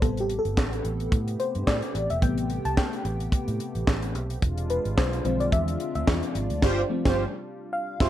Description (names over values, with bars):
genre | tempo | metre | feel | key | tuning
early-eighties boogie funk | 109 BPM | 4/4 | swing 56% on 16ths | A minor | A4 = 439 Hz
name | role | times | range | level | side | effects
FM electric piano with soft pad layer | accompaniment | 0.0-8.1 s | C3 to A5 | -29 LUFS | left 2 dB | chorus
brassy analog pad | sustained chords | 0.0-8.1 s | C3 to G4 | -35 LUFS | equal | chorus
vintage muted fingered electric bass | bass | 0.0-8.1 s | E1 to A2 | -29 LUFS | right 1 dB | none
tight funk drum kit | drums | 0.0-8.1 s | crash cymbal, handclaps, hi-hat, kick drum, snare drum | -25 LUFS | equal | gated reverb
mellow synth brass | second line | 6.6-8.1 s | F4 to C5 | -27 LUFS | right 4 dB | chorus
room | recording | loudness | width
light reverb | none | -24 LUFS | side -12 dB against mid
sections
0.0-8.1 A section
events
FM electric piano solo 0.0-8.1; band accent 6.6-8.1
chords
0.0 Am9; 4.4 E7b9b13; 6.6 G7sus4